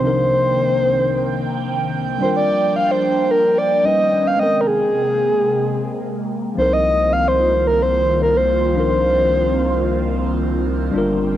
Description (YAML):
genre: amapiano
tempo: 110 BPM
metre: 4/4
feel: swing 55% on 16ths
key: C minor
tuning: A4 = 440 Hz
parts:
  - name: breathy flute-like synth lead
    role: melody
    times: 0.0-10.4 s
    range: Ab4 to F5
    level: -17 LUFS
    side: equal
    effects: chorus, tape echo
  - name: tine electric piano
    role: accompaniment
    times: 0.0-11.4 s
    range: C3 to G5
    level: -24 LUFS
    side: left 2 dB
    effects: medium stereo tremolo, cassette tape
  - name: airy breathy pad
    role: sustained chords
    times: 0.0-11.4 s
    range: C2 to G5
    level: -23 LUFS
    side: right 1 dB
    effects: chorus, phaser, cassette tape
  - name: saturated sub bass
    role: bass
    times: 6.6-11.4 s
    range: G1 to C2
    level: -22 LUFS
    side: equal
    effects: none
room: moderate small room reverb, RT60 0.5 s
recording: home recording on cassette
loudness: -15 LUFS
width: side -12 dB against mid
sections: 0.0-11.4 A section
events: none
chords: 0.0 Cm11; 2.2 Gm7; 3.9 Ebaug7; 4.4 Abmaj9; 6.6 Cm11